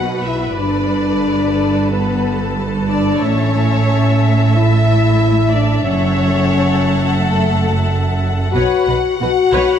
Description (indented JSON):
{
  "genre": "cinematic, epic orchestral film score",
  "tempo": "90 BPM",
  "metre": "4/4",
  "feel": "straight",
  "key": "F# phrygian",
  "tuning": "A4 = 440 Hz",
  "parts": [
    { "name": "warm symphonic violin section", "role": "melody", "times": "0.0-9.8 s", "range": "A4 to F#5", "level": "-25 LUFS", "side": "left 2 dB", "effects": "none" },
    { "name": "warm symphonic violin section", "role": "second line", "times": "0.0-9.8 s", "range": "B4 to A5", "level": "-25 LUFS", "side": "left 4 dB", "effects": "none" },
    { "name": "dark chamber viola section", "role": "accompaniment", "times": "0.0-9.8 s", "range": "F#4 to E5", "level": "-24 LUFS", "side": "left 1 dB", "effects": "none" },
    { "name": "mellow French horn section", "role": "sustained chords", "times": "0.0-9.8 s", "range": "A3 to F#4", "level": "-17 LUFS", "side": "left 4 dB", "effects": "none" },
    { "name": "rich symphonic double bass section", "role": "bass", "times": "0.0-9.6 s", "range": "F#1 to B1", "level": "-18 LUFS", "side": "right 3 dB", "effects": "none" },
    { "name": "warm symphonic cello section", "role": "bass", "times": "0.0-9.6 s", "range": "F#2 to B2", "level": "-20 LUFS", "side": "right 3 dB", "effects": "none" }
  ],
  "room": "moderate scoring stage reverb, RT60 1.6 s",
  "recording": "none",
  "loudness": "-13 LUFS",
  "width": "side -8 dB against mid",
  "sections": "0.0-9.8 A section",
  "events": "none",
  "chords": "0.0 B5; 0.6 Gadd9; 3.2 A; 5.9 F#m; 8.5 Bsus2"
}